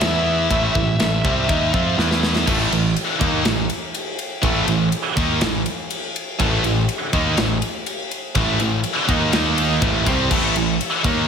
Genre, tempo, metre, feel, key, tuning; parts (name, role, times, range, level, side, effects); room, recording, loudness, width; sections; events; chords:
heavy metal; 122 BPM; 4/4; straight; A4 = 440 Hz
high-gain lead guitar; melody; 0.0-1.9 s; E5; -24 LUFS; left 1 dB; distortion, slapback echo, ping-pong delay
heavy high-gain guitar; riff; 0.0-11.3 s; A2 to F4; -24 LUFS; left 11 dB; distortion, slapback echo
heavy high-gain guitar; riff; 0.0-11.3 s; A2 to F4; -24 LUFS; right 9 dB; distortion, slapback echo
growling picked electric bass; bass; 0.0-11.3 s; A1 to F2; -23 LUFS; equal; overdrive
tight metal drum kit; drums; 0.0-11.2 s; crash cymbal, kick drum, ride cymbal, snare drum; -23 LUFS; left 1 dB
thick fuzz guitar; riff; 2.5-11.3 s; A2 to D#4; -24 LUFS; right 1 dB; distortion
moderate lush hall reverb, RT60 2.0 s; big arena sound; -17 LUFS; side -7 dB against mid
0.0-2.5 A section; 2.5-11.3 B section
drum fill 2.0-2.5; half time 2.5-11.3
0.0 E5; 0.5 Am; 2.0 E5; 2.5 A5; 9.3 D#5; 9.8 Am